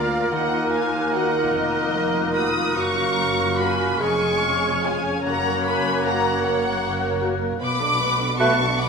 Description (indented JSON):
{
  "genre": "classical, slow romantic movement for symphony orchestra",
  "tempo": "49 BPM (dotted quarters)",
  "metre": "6/8",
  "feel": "uneven beats, rubato",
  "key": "unclear",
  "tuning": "A4 = 443 Hz",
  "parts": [
    { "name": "warm symphonic violin section", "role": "melody", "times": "0.0-8.9 s", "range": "Eb5 to Eb6", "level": "-25 LUFS", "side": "left 2 dB", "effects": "none" },
    { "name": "mellow clarinet", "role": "second line", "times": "0.0-8.5 s", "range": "Eb4 to Ab4", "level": "-30 LUFS", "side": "left 2 dB", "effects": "none" },
    { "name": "mellow hollow large flute ensemble", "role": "second line", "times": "0.0-8.6 s", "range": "F6 to Gb6", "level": "-31 LUFS", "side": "left 4 dB", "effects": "none" },
    { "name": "rich studio violin section", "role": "second line", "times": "0.0-8.9 s", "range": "Bb4 to Cb6", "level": "-31 LUFS", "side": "left 1 dB", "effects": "none" },
    { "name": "warm oboe", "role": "second line", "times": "0.0-8.5 s", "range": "Bb4 to Db5", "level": "-29 LUFS", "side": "right 1 dB", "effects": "none" },
    { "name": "mellow bassoon", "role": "accompaniment", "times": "0.0-8.5 s", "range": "Ab3 to Bb3", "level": "-26 LUFS", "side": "right 3 dB", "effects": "none" },
    { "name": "warm studio viola section", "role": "accompaniment", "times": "0.0-8.9 s", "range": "Bb3 to B4", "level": "-28 LUFS", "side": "right 2 dB", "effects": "none" },
    { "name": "mellow French horn section", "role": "sustained chords", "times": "0.0-8.5 s", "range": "Ab3 to Gb4", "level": "-32 LUFS", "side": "left 4 dB", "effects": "none" },
    { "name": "concert harp", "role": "arpeggios", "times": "0.0-8.9 s", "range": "F2 to Db6", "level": "-32 LUFS", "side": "left 7 dB", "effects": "none" },
    { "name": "dark studio double bass section", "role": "bass", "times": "0.0-8.9 s", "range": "F1 to Eb2", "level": "-32 LUFS", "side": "right 4 dB", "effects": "none" },
    { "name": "warm studio cello section", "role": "bass", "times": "0.0-8.9 s", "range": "D2 to B2", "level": "-32 LUFS", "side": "right 3 dB", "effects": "none" }
  ],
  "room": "moderate scoring stage reverb, RT60 1.6 s",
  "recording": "minimal, uncompressed stereo recording",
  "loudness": "-19 LUFS",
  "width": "side -5 dB against mid",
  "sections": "0.0-8.9 A section",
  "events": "none",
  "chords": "0.3 Ebm; 2.8 Gb; 4.0 Db/F; 5.3 Gb; 7.6 Bm7"
}